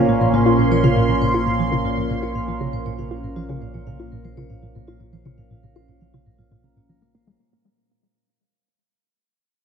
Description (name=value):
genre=ambient, sequencer-driven space music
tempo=119 BPM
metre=4/4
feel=straight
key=unclear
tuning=A4 = 440 Hz
part: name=phased analog pad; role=sustained chords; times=0.0-7.4 s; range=Bb2 to C6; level=-20 LUFS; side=right 1 dB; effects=phaser, chorus
part: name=vibraphone with hard mallets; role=arpeggios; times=0.0-7.4 s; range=F4 to Bb5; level=-29 LUFS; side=right 3 dB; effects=auto-pan, analog delay
part: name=resonant blip pluck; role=riff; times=0.0-7.3 s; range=Bb2 to F4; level=-22 LUFS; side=left 1 dB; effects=chorus, analog delay
part: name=warm sub bass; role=bass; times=0.0-7.4 s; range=Bb1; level=-33 LUFS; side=right 1 dB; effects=tube saturation
room=wet concert hall reverb, RT60 2.1 s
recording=none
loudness=-17 LUFS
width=side -7 dB against mid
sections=0.0-7.4 A section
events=fade-out on vibraphone 0.0-7.4; fade-out 0.0-7.4; filter sweep on synth arpeggio sound 0.0-7.4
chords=0.0 Bbmadd9